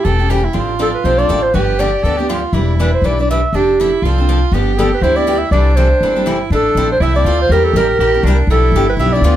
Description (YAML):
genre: acoustic string swing (jazz manouche)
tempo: 242 BPM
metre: 4/4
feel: swing 56% on 8ths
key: C major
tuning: A4 = 440 Hz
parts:
  - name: warm clarinet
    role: melody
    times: 0.0-9.4 s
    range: G4 to E5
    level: -15 LUFS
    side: right 1 dB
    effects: none
  - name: breathy soprano saxophone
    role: second line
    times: 0.0-9.4 s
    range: D4 to A4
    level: -20 LUFS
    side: right 4 dB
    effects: none
  - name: picked steel-string acoustic guitar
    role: accompaniment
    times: 0.0-9.3 s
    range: C3 to B4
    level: -20 LUFS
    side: left 2 dB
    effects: none
  - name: upright bass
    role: bass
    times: 0.0-9.4 s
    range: E1 to E2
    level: -15 LUFS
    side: equal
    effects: none
room: moderate studio reverb, RT60 0.5 s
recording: heard from further back in the room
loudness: -11 LUFS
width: side -12 dB against mid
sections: 0.0-6.5 A section; 6.5-9.4 B section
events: none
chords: 0.0 A7; 0.6 Dm7/A; 1.5 G7; 2.5 Em7; 3.5 F6; 4.5 G7; 5.5 C6; 6.5 Fmaj7; 7.5 C7; 8.5 G7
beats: 0.06 0.30 | 0.55 0.80 1.05 1.30 | 1.55 1.79 2.04 2.29 | 2.54 2.79 3.04 3.29 | 3.53 3.78 4.03 4.28 | 4.53 4.78 5.03 5.27 | 5.52 5.77 6.02 6.27 | 6.51 6.76 7.01 7.26 | 7.50 7.75 8.00 8.25 | 8.49 8.74 8.99 9.24